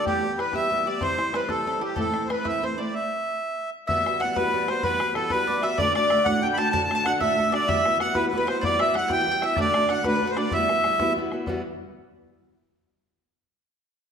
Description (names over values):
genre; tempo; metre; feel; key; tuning
celtic folk, Celtic jig; 127 BPM (dotted quarters); 6/8; straight; E minor; A4 = 439 Hz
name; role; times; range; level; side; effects
accordion; melody; 0.0-11.1 s; G4 to B5; -24 LUFS; right 1 dB; none
accordion; second line; 0.0-11.1 s; G4 to A5; -30 LUFS; left 5 dB; none
mandolin; second line; 0.0-11.1 s; G4 to A5; -30 LUFS; right 2 dB; none
fingerpicked steel-string acoustic guitar; accompaniment; 0.0-11.6 s; D2 to G4; -28 LUFS; equal; none
bodhran; percussion; 0.1-11.6 s; none; -34 LUFS; left 3 dB; none
room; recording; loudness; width
wet recital hall reverb, RT60 1.5 s; minimal, uncompressed stereo recording; -21 LUFS; side -7 dB against mid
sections
0.0-3.9 A section; 3.9-11.5 B section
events
stop 2.9-3.9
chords
0.1 Em; 1.0 C; 2.0 Am; 2.9 N.C.; 3.9 Emadd9; 5.8 D; 7.7 Emadd9; 9.6 D; 10.5 Emadd9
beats
| 0.06 0.54 | 1.02 1.50 | 1.98 2.46 | 2.93 3.41 | 3.89 4.36 | 4.84 5.31 | 5.79 6.26 | 6.74 7.21 | 7.68 8.15 | 8.63 9.10 | 9.57 10.05 | 10.52 10.99 | 11.47